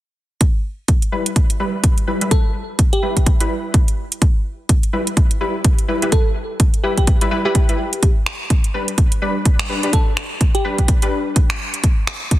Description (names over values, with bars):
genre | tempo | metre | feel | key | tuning
bass house | 126 BPM | 4/4 | swing 59% on 16ths | E minor | A4 = 440 Hz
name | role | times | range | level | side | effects
electronic kick drum | drums | 0.4-12.4 s | none | -15 LUFS | equal | none
house drum kit | drums | 0.4-12.4 s | finger snaps, hi-hat | -22 LUFS | right 2 dB | soft clipping on snare
orchestra-hit-like synth stab | stabs | 1.1-12.4 s | G3 to B4 | -22 LUFS | left 1 dB | built-in reverb, cassette tape, sidechain pumping, digital delay
bell-like FM electric piano | melody | 2.3-3.3, 6.1-10.9 s | G4 to A4 | -24 LUFS | equal | chorus, phaser, digital delay
room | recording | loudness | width
digital ambience | dense, heavily limited modern master | -15 LUFS | side -15 dB against mid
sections
0.4-12.4 A section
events
none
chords
0.4 Em; 8.0 G